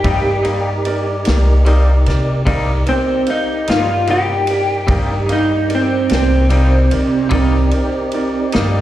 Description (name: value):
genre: slow blues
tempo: 50 BPM (dotted quarters)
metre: 12/8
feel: straight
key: C minor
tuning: A4 = 442 Hz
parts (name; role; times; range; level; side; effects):
- electric guitar through a small old amp; melody; 0.0-8.5 s; C4 to G4; -17 LUFS; right 1 dB; analog chorus, slapback echo
- clean electric guitar; accompaniment; 0.0-8.8 s; C3 to Eb4; -23 LUFS; left 3 dB; harmonic tremolo, slapback echo
- warm upright piano; accompaniment; 0.0-8.8 s; Eb4 to F5; -25 LUFS; right 3 dB; slapback echo
- tonewheel organ; sustained chords; 0.0-8.8 s; Eb4 to D5; -25 LUFS; equal; slow rotary speaker
- upright bass; bass; 0.0-8.8 s; C2 to C3; -16 LUFS; equal; none
- natural country drum kit; drums; 0.0-8.7 s; kick drum, ride cymbal, snare drum; -23 LUFS; equal; none
room: little or no reverb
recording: live gig heard through the venue's PA, recital hall reverb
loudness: -13 LUFS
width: side -13 dB against mid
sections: 0.0-8.8 A section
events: clean electric guitar solo 0.0-8.8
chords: 0.0 Cm7